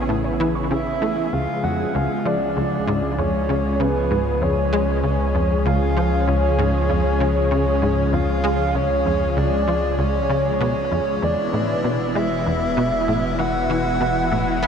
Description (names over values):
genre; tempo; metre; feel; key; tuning
ambient, sequencer-driven space music; 97 BPM; 4/4; straight; unclear; A4 = 440 Hz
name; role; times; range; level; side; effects
lush unison pad; sustained chords; 0.0-14.7 s; B2 to G#4; -23 LUFS; left 1 dB; chorus
warbly dusty pluck; arpeggios; 0.0-1.3 s; E4 to C#6; -35 LUFS; right 1 dB; none
warm sub bass; bass; 0.0-14.7 s; E1 to C#2; -25 LUFS; equal; none
bubbling stepped-filter texture; texture; 0.0-14.7 s; G#3 to G#4; -38 LUFS; equal; none
tight sequencer bass; riff; 0.1-14.7 s; C#2 to B3; -24 LUFS; equal; ensemble chorus, analog delay
breathy flute-like synth lead; melody; 0.7-14.7 s; B4 to G#5; -23 LUFS; equal; wide subtle chorus, vintage 12-bit sampler grit, analog delay
room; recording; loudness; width
wet huge ambient reverb, RT60 8.0 s; dark, warm production; -18 LUFS; side -7 dB against mid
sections
0.0-1.3 A section; 1.3-14.7 B section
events
none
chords
0.0 A; 1.3 C#; 11.2 Esus4